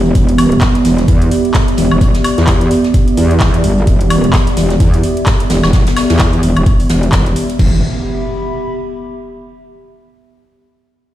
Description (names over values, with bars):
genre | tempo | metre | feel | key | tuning
bass house | 129 BPM | 4/4 | swing 58% on 16ths | E minor | A4 = 440 Hz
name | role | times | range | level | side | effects
dark analog pad | sustained chords | 0.0-7.8 s | B3 to E5 | -19 LUFS | left 1 dB | chorus, sidechain pumping
metallic wobble bass | bass | 0.0-7.8 s | E1 to E2 | -13 LUFS | equal | chorus, overdrive, sidechain pumping
warbly tape-like pad | texture | 0.0-9.4 s | B3 to B5 | -18 LUFS | right 2 dB | chorus, built-in reverb, sidechain pumping
soft brush drum kit | drums | 0.1-7.6 s | hi-hat, snare drum | -25 LUFS | right 1 dB | sidechain pumping on hats, high-pass filter on hats, high-pass filter on snare, high-pass filter on room
electronic kick drum | drums | 0.2-7.7 s | none | -12 LUFS | equal | none
garage drum kit | drums | 0.2-7.7 s | crash cymbal, handclaps, hi-hat, woodblock | -21 LUFS | left 1 dB | none
impact | sound effects | 7.6-9.5 s | none | -21 LUFS | equal | none
room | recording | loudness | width
light reverb, digital ambience | played on a big sound system in a bare room, stone room reverb | -10 LUFS | side -13 dB against mid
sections
0.0-7.6 A section; 7.6-9.5 B section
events
none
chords
0.0 Em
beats
| 0.15 0.62 1.08 1.55 | 2.01 2.48 2.94 3.41 | 3.87 4.34 4.80 5.27 | 5.73 6.20 6.66 7.13 | 7.59 8.06 8.52 8.99